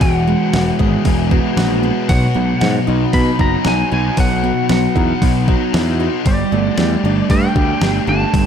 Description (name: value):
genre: rock, shoegaze and dream pop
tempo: 115 BPM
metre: 4/4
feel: straight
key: B major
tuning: A4 = 440 Hz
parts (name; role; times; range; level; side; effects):
- lightly driven lead guitar; melody; 0.0-8.5 s; D5 to B5; -22 LUFS; left 2 dB; analog delay
- picked twelve-string acoustic guitar; arpeggios; 0.0-8.5 s; F#3 to G#4; -26 LUFS; left 11 dB; wide subtle chorus, analog delay
- mellow electric guitar; riff; 0.0-8.5 s; B2 to G4; -19 LUFS; right 10 dB; reverse reverb
- thick fuzz guitar; riff; 0.0-8.5 s; B2 to G4; -21 LUFS; left 10 dB; distortion, ensemble chorus
- overdriven picked electric bass; bass; 0.0-8.5 s; E1 to B2; -18 LUFS; equal; none
- crisp 8-bit digital drum machine; drums; 0.0-8.5 s; hi-hat, kick drum, snare drum; -18 LUFS; equal; overdrive
room: light reverb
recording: none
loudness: -13 LUFS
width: side -8 dB against mid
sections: 0.0-8.5 A section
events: none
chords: 0.0 Eadd9; 2.1 B; 6.3 Gsus2